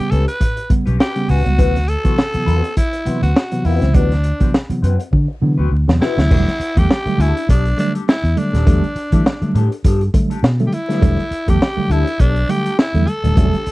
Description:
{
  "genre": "funk",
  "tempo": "102 BPM",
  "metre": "4/4",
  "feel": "swing 56% on 16ths",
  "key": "E minor",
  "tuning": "A4 = 439 Hz",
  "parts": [
    { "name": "growling tenor saxophone", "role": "melody", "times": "0.0-13.7 s", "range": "D4 to B4", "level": "-22 LUFS", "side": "equal", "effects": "none" },
    { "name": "mellow tine electric piano", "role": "stabs", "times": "0.0-13.5 s", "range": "A2 to B3", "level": "-20 LUFS", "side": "right 2 dB", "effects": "medium stereo tremolo" },
    { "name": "electric guitar at the edge of break-up", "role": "accompaniment", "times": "0.1-13.7 s", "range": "C4 to B4", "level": "-26 LUFS", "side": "left 7 dB", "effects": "wah, phaser" },
    { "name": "vintage muted fingered electric bass", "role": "bass", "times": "0.1-13.7 s", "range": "D#1 to E3", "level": "-16 LUFS", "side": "equal", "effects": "none" },
    { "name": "crunchy breakbeat drum kit", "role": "drums", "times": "0.1-13.7 s", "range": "crash cymbal, hi-hat, kick drum, snare drum", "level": "-16 LUFS", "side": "equal", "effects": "none" }
  ],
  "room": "little or no reverb",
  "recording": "dry, close 1970s-style studio recording, vinyl crackle",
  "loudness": "-14 LUFS",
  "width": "side -19 dB against mid",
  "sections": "0.0-6.3 A section; 6.3-13.7 B section",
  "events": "drum fill 5.1-6.3",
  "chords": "0.0 A9; 1.6 D13; 6.3 Em11",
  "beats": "0.41 1.00 | 1.59 2.18 2.77 3.36 | 3.95 4.54 5.13 5.72 | 6.31 6.90 7.49 8.08 | 8.67 9.25 9.84 10.43 | 11.02 11.61 12.20 12.78 | 13.37"
}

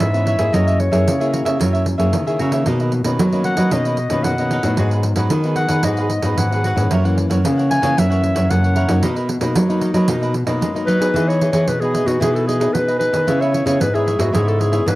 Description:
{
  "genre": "samba and choro",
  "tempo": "113 BPM",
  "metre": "4/4",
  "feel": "straight",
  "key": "B major, E major from 11.2 s",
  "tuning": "A4 = 440 Hz",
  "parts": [
    { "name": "warm clarinet", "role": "melody", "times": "0.0-15.0 s", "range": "F#4 to G#5", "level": "-20 LUFS", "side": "left 1 dB", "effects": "cassette tape" },
    { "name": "cavaquinho", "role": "accompaniment", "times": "0.0-14.8 s", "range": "D#4 to F#5", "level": "-25 LUFS", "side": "right 2 dB", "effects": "cassette tape" },
    { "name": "nylon-string guitar", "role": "accompaniment", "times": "0.0-15.0 s", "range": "F#2 to G#4", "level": "-24 LUFS", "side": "left 3 dB", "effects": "cassette tape" },
    { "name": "nylon-string guitar", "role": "bass", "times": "0.0-15.0 s", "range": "F#2 to G#3", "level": "-18 LUFS", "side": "equal", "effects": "none" },
    { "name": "pandeiro", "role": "percussion", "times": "0.0-15.0 s", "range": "none", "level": "-24 LUFS", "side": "right 3 dB", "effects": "none" }
  ],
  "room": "small room reverb",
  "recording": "home recording on cassette",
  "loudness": "-15 LUFS",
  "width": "side -17 dB against mid",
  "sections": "0.0-11.2 A section; 11.2-15.0 B section",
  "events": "clarinet solo 0.0-11.2",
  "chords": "0.0 C#m7/G#; 0.5 F#9; 2.7 Bmaj9; 4.8 G#m7; 6.9 F#7; 9.0 Bmaj7; 11.2 Emaj7; 13.3 C#m7",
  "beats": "0.00 | 0.54 1.07 1.60 2.13 | 2.66 3.19 3.72 4.26 | 4.79 5.32 5.85 6.38 | 6.91 7.44 7.97 8.50 | 9.03 9.56 10.09 10.62 | 11.15 11.68 12.21 12.74 | 13.28 13.81 14.34 14.87"
}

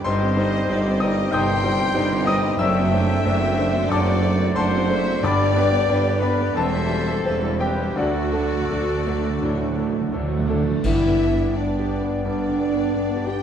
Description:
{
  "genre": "classical, romantic movement for piano and orchestra",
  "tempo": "81-97 BPM",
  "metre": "4/4",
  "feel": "rubato",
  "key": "G major",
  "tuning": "A4 = 440 Hz",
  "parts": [
    { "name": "clear grand piano", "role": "melody", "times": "0.0-13.4 s", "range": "D2 to G6", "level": "-23 LUFS", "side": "left 1 dB", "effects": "none" },
    { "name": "rich chamber violin section", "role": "melody", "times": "0.0-13.4 s", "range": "A4 to G5", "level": "-37 LUFS", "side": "left 6 dB", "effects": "none" },
    { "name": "clear clarinet", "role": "second line", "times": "0.0-13.4 s", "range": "D4 to G5", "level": "-31 LUFS", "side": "left 3 dB", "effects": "none" },
    { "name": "rich chamber violin section", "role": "second line", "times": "0.0-13.4 s", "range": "F#4 to G5", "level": "-32 LUFS", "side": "left 4 dB", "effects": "none" },
    { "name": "warm oboe", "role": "second line", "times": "0.0-13.4 s", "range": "F#4 to G5", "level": "-32 LUFS", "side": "left 1 dB", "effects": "none" },
    { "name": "silver concert flute", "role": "second line", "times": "0.1-13.4 s", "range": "A4 to C6", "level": "-32 LUFS", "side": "left 2 dB", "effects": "none" },
    { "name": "rich studio viola section", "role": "accompaniment", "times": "0.1-13.4 s", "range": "E3 to G4", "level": "-30 LUFS", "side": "equal", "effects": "none" },
    { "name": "warm French horn section", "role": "sustained chords", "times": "0.1-13.4 s", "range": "G3 to G4", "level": "-26 LUFS", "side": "left 1 dB", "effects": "none" },
    { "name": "clear tuba", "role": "bass", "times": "0.1-10.8 s", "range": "E1 to D2", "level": "-30 LUFS", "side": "right 3 dB", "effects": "none" },
    { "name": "rich chamber cello section", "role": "bass", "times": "0.1-13.4 s", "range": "D2 to G2", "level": "-28 LUFS", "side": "right 2 dB", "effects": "none" },
    { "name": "rich chamber double bass section", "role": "bass", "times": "0.1-13.4 s", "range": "E1 to D2", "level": "-29 LUFS", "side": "right 3 dB", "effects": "none" },
    { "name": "timpani", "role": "percussion", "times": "5.2-10.8 s", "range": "G2 to D3", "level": "-30 LUFS", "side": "right 2 dB", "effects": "none" },
    { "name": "cymbal swell, clash cymbals and concert bass drum", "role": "percussion", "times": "8.0-12.2 s", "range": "none", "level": "-29 LUFS", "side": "equal", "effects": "none" },
    { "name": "mellow bassoon", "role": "accompaniment", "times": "10.9-13.4 s", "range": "B3", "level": "-32 LUFS", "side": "left 1 dB", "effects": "none" }
  ],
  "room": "moderate recital hall reverb, RT60 1.8 s",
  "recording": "dark, warm production",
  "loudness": "-18 LUFS",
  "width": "side -8 dB against mid",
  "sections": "0.0-10.8 A section; 10.8-13.4 B section",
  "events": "timpani fill 8.0-10.8; band accent 10.8-11.6",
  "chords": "0.1 Cm/G; 2.6 D7/F#; 5.2 G; 6.6 C/E; 8.0 D; 10.8 G",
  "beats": "| 0.05 0.70 1.33 1.95 | 2.60 3.25 3.90 4.56 | 5.22 5.88 6.56 7.24 | 7.96 8.69 9.41 10.12 | 10.84 11.55 12.24 12.93"
}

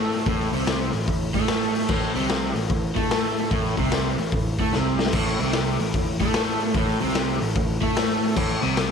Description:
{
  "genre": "blues rock power trio and southern rock",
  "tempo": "148 BPM",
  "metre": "4/4",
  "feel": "swing 65% on 8ths",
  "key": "A minor",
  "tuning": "A4 = 440 Hz",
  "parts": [
    { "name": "raw garage guitar", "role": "riff", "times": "0.0-8.9 s", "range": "A2 to A3", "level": "-24 LUFS", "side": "right 1 dB", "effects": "overdrive" },
    { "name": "growling picked electric bass", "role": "bass", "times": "0.0-8.9 s", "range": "A1 to A2", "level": "-28 LUFS", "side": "equal", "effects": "overdrive" },
    { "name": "raw garage drum kit", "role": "drums", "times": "0.1-8.9 s", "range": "crash cymbal, hi-hat, kick drum, snare drum", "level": "-25 LUFS", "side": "left 2 dB", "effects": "none" }
  ],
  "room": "light reverb",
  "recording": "1960s-style stereo",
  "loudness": "-21 LUFS",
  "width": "side -6 dB against mid",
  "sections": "0.0-5.1 A section; 5.1-8.9 A section",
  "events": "drum fill 4.7-5.1",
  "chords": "0.0 Am",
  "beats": "| 0.27 0.68 1.08 1.49 | 1.90 2.30 2.71 3.11 | 3.52 3.92 4.33 4.73 | 5.13 5.54 5.94 6.35 | 6.75 7.16 7.56 7.96 | 8.37 8.77"
}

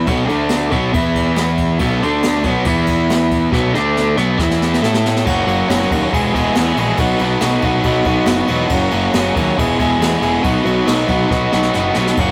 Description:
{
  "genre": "garage rock duo or trio",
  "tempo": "139 BPM",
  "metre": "4/4",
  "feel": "straight",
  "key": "unclear",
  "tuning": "A4 = 441 Hz",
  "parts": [
    { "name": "overdriven combo organ", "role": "sustained chords", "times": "0.0-12.3 s", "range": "A3 to E5", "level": "-28 LUFS", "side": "equal", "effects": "none" },
    { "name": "overdriven electric guitar", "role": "riff", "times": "0.0-12.3 s", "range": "E2 to A4", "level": "-18 LUFS", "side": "equal", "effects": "none" },
    { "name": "fuzz picked electric bass", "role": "bass", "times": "0.0-12.3 s", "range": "E1 to A2", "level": "-22 LUFS", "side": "equal", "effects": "overdrive" },
    { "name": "jazz brush drum kit", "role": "drums", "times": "0.1-12.3 s", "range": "crash cymbal, kick drum, ride cymbal, snare drum", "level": "-24 LUFS", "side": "equal", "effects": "none" }
  ],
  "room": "light reverb",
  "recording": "rough rehearsal-room recording, warm saturation",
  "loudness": "-16 LUFS",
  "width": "mono",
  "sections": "0.0-5.3 A section; 5.3-12.3 B section",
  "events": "drum fill 3.5-5.3, 11.3-12.2",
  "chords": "0.1 B5; 0.3 D5; 0.7 B5; 0.9 E5; 1.8 B5; 2.0 D5; 2.5 B5; 2.7 E5; 3.5 B5; 3.7 D5; 4.2 B5; 4.4 E5; 4.8 A5; 5.3 F#; 6.1 E; 7.0 B; 8.7 F#; 9.6 E; 10.4 B",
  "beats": "| 0.09 0.52 0.95 1.38 | 1.81 2.24 2.67 3.10 | 3.53 3.96 4.39 4.82 | 5.25 5.68 6.11 6.55 | 6.98 7.41 7.84 8.28 | 8.71 9.14 9.58 10.01 | 10.45 10.88 11.32 11.75 | 12.19"
}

